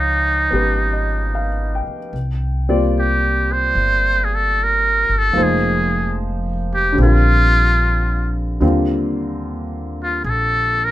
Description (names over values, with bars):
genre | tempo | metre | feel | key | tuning
jazz ballad | 74 BPM | 4/4 | swing 67% on 8ths | unclear | A4 = 437 Hz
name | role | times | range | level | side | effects
trumpet with metal mute | melody | 0.0-10.9 s | Eb4 to C5 | -17 LUFS | equal | none
warm concert grand piano | accompaniment | 0.0-10.9 s | D3 to G5 | -22 LUFS | left 1 dB | none
upright bass | bass | 0.0-10.9 s | F1 to Eb2 | -19 LUFS | equal | none
room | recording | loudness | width
light reverb | minimal, uncompressed stereo recording | -15 LUFS | side -14 dB against mid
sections
0.0-10.9 A section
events
none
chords
0.0 Db9; 2.1 C5; 5.4 Fm7; 7.0 Bb; 8.6 Ebmaj9